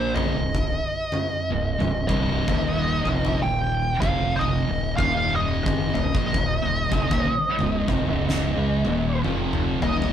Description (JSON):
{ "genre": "stoner and doom metal", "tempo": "62 BPM", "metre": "4/4", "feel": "swing 60% on 8ths", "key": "unclear", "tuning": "A4 = 440 Hz", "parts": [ { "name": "fuzz lead guitar", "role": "melody", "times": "0.0-10.1 s", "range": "C5 to G5", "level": "-26 LUFS", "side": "right 1 dB", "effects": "wah, distortion" }, { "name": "thick fuzz guitar", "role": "riff", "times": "0.0-10.1 s", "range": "C2 to Bb3", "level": "-25 LUFS", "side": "equal", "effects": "distortion" }, { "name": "growling fingered electric bass", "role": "bass", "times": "0.0-10.1 s", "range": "C1 to Db2", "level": "-29 LUFS", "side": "equal", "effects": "overdrive" }, { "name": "oversized low-tuned drum kit", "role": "drums", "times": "0.2-10.1 s", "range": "kick drum, snare drum, toms", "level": "-26 LUFS", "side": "equal", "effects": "none" } ], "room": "moderate studio reverb, RT60 0.8 s", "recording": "band playing live in one room", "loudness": "-21 LUFS", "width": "side -9 dB against mid", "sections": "0.0-10.1 A section", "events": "drum fill 8.3-10.1", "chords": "0.0 Cm; 2.5 Eb5" }